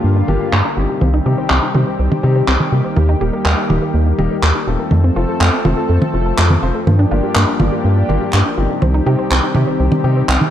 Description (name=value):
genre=italo disco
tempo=123 BPM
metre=4/4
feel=straight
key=C dorian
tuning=A4 = 441 Hz
part: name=lush unison pad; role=sustained chords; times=0.0-10.5 s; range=D3 to A4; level=-21 LUFS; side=equal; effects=chorus
part: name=analog pluck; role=arpeggios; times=0.0-10.5 s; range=A3 to C5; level=-24 LUFS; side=right 2 dB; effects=chorus, cassette tape, ping-pong delay
part: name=warm baby grand piano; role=stabs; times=0.0-10.2 s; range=G2 to C5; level=-23 LUFS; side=left 6 dB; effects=ping-pong delay
part: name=round analog bass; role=bass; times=0.0-10.4 s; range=Eb1 to C3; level=-15 LUFS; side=equal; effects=tube saturation
part: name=damped 70s drum kit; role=drums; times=0.3-10.5 s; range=handclaps, toms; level=-18 LUFS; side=right 1 dB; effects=low-pass filter on toms, low-pass filter on hats, low-pass filter on snare, low-pass filter on room
room=light reverb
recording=dark, warm production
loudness=-13 LUFS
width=side -10 dB against mid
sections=0.0-10.5 A section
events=filter sweep on synth arpeggio sound 0.0-10.5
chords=0.0 Gm7; 1.0 Cm; 3.0 Eb; 4.9 F; 6.9 Gm7; 8.8 Cm